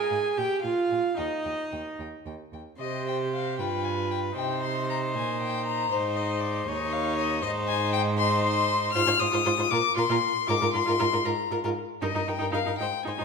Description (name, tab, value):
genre	quick classical-period movement for string quartet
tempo	78 BPM (dotted quarters)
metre	6/8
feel	rubato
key	C minor, Eb major from 9.0 s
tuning	A4 = 440 Hz
part	warm violin	second line	0.0-13.2 s	Bb4 to Ab5	-31 LUFS	left 2 dB	none
part	warm viola	accompaniment	0.0-13.2 s	Eb4 to Ab4	-30 LUFS	right 3 dB	none
part	warm violin	melody	0.1-13.2 s	C5 to F6	-28 LUFS	left 8 dB	none
part	rich cello	bass	0.1-13.2 s	Eb2 to C3	-32 LUFS	right 4 dB	none
room	moderate scoring stage reverb, RT60 1.6 s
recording	minimal, uncompressed stereo recording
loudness	-24 LUFS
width	side -5 dB against mid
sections	0.0-2.8 A section; 2.8-13.2 B section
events	none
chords	0.4 Bb5; 1.2 Eb; 2.8 C5; 3.6 G7; 4.4 Cm; 5.9 Ab; 6.7 Dbadd9/Eb; 7.4 Ab; 9.0 Fm7/Ab; 9.7 Bb5; 10.5 Bb5/Ab; 12.0 Eb/G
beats	0.37 | 1.17 1.99 | 2.80 3.59 | 4.37 5.15 | 5.92 6.67 | 7.44 8.19 | 8.95 9.71 | 10.48 11.25 | 12.01 12.79